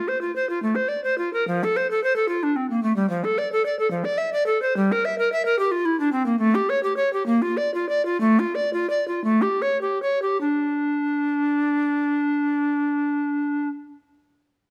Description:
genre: classical, baroque-style fantasia for unaccompanied recorder.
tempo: 50-75 BPM (dotted quarters).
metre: 6/8.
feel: rubato.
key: F major, D minor from 3.1 s.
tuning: A4 = 439 Hz.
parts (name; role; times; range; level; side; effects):
bright bass recorder; solo; 0.0-13.7 s; F3 to E5; -23 LUFS; equal; none.
room: wet stone room reverb, RT60 1.2 s.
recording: none.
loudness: -23 LUFS.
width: mono.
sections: 0.0-10.4 A section; 10.4-14.7 B section.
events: slowing down 5.6-10.4.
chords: none.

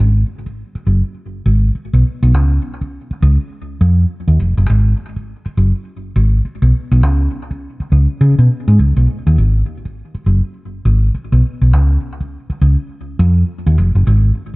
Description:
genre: funk.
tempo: 102 BPM.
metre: 4/4.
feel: swing 60% on 16ths.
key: G# dorian.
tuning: A4 = 442 Hz.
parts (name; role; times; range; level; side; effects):
hollow-body short-scale fingered electric bass; solo; 0.0-14.6 s; E#1 to C#3; -12 LUFS; equal; none.
room: little or no reverb.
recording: dark, warm production.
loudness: -12 LUFS.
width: side -25 dB against mid.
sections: 0.0-14.6 A section.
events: none.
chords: none.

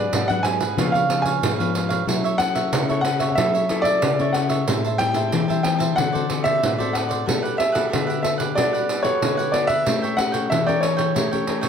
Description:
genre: samba and choro.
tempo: 92 BPM.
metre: 4/4.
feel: straight.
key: unclear.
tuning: A4 = 440 Hz.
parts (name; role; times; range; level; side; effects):
warm concert grand piano; melody; 0.0-11.7 s; C#5 to G#5; -22 LUFS; equal; slapback echo.
cavaquinho; accompaniment; 0.0-11.7 s; D4 to A5; -28 LUFS; right 5 dB; none.
nylon-string guitar; accompaniment; 0.0-11.7 s; G#2 to Bb4; -24 LUFS; left 5 dB; none.
pandeiro; percussion; 0.1-11.7 s; none; -25 LUFS; right 3 dB; none.
room: moderate studio ambience, RT60 0.4 s.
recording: none.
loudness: -18 LUFS.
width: side -7 dB against mid.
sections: 0.0-11.7 A section.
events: none.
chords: 0.0 G#m7b5; 0.8 C#7b9; 2.1 F#m7; 4.7 Am7; 6.0 D7; 7.3 Gmaj9; 9.9 A7b9.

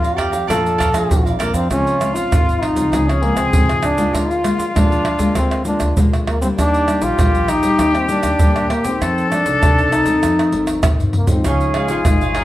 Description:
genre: samba and choro.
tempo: 98 BPM.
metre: 4/4.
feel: straight.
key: Bb major.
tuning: A4 = 438 Hz.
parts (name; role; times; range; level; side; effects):
clear trombone; melody; 0.0-12.4 s; Bb3 to A4; -19 LUFS; equal; none.
cavaquinho; accompaniment; 0.0-1.7, 11.4-12.4 s; Eb4 to Bb5; -24 LUFS; right 5 dB; none.
nylon-string guitar; accompaniment; 0.0-12.4 s; F2 to F4; -22 LUFS; left 2 dB; none.
egg shaker, pandeiro, tamborim and surdo; percussion; 0.0-12.4 s; none; -19 LUFS; right 1 dB; none.
upright bass; bass; 0.2-12.4 s; G1 to F2; -23 LUFS; equal; none.
breathy bright concert flute; second line; 1.7-12.4 s; F4 to A4; -22 LUFS; left 3 dB; none.
room: wet large studio reverb, RT60 0.9 s.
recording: band playing live in one room.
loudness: -14 LUFS.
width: side -15 dB against mid.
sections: 0.0-1.7 A section; 1.7-12.4 B section.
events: trombone solo 0.0-1.7; drum fill 10.8-11.5.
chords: 0.0 Bbmaj7; 1.7 Dbmaj7; 4.1 Bb7/D; 6.6 Ebmaj7; 9.0 F7; 11.5 Dbadd9.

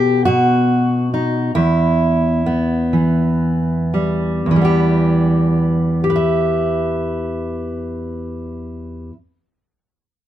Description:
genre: folk, solo fingerstyle acoustic guitar.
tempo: 37-49 BPM (dotted quarters).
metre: 6/8.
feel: rubato.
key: E minor.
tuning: A4 = 440 Hz.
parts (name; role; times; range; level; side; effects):
fingerpicked steel-string acoustic guitar; solo; 0.0-9.2 s; E2 to E5; -15 LUFS; equal; none.
room: light reverb.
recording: close, detailed microphones.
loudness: -15 LUFS.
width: side -12 dB against mid.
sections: 0.0-4.5 A section; 4.5-7.6 B section.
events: slowing down 0.0-4.5.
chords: 0.3 B; 1.6 Em.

